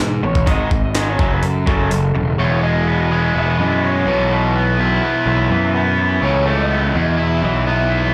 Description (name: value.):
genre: indie rock.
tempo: 125 BPM.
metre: 4/4.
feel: straight.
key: E major.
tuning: A4 = 440 Hz.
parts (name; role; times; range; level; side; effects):
electric guitar through a small old amp; melody; 0.0-8.1 s; A4 to E5; -27 LUFS; equal; subtle chorus, slapback echo, plate reverb.
overdriven electric guitar; riff; 0.0-8.1 s; E2 to E4; -22 LUFS; equal; slapback echo.
fuzz picked electric bass; bass; 0.0-8.1 s; E1 to G#2; -20 LUFS; equal; overdrive.
jungle sampler-style drum kit; drums; 0.0-2.0 s; hi-hat, kick drum, snare drum; -22 LUFS; equal; none.
crunchy overdriven guitar; riff; 2.4-8.1 s; E2 to A4; -26 LUFS; equal; subtle chorus, slapback echo.
room: light reverb.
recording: live gig heard through the venue's PA, club reverb.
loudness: -17 LUFS.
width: mono.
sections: 0.0-2.4 A section; 2.4-8.1 B section.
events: kick and snare drop out 1.9-2.4.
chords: 0.5 G#5; 1.2 F#m; 2.4 E; 4.1 Bsus4; 6.2 Aadd9/C#; 7.0 E.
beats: | 0.47 0.95 1.43 1.91 | 2.39 2.87 3.35 3.83 | 4.32 4.79 5.27 5.75 | 6.23 6.71 7.19 7.67.